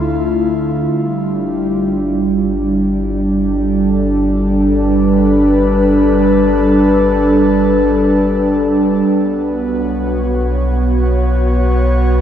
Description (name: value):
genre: ambient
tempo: free time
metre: none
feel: none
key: unclear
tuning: A4 = 438 Hz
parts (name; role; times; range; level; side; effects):
- airy breathy pad; sustained chords; 0.0-12.2 s; D3 to Db5; -12 LUFS; equal; chorus
- warm sub bass; bass; 0.0-12.2 s; G1 to D2; -19 LUFS; equal; tube saturation
room: wet plate reverb, RT60 2.6 s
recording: none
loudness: -12 LUFS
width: side -9 dB against mid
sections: 0.0-12.2 A section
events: fade-in on sub bass 0.0-12.2; filter sweep on analog synth pad 0.0-12.2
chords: 0.0 Dm; 0.9 G13; 9.1 B5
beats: free time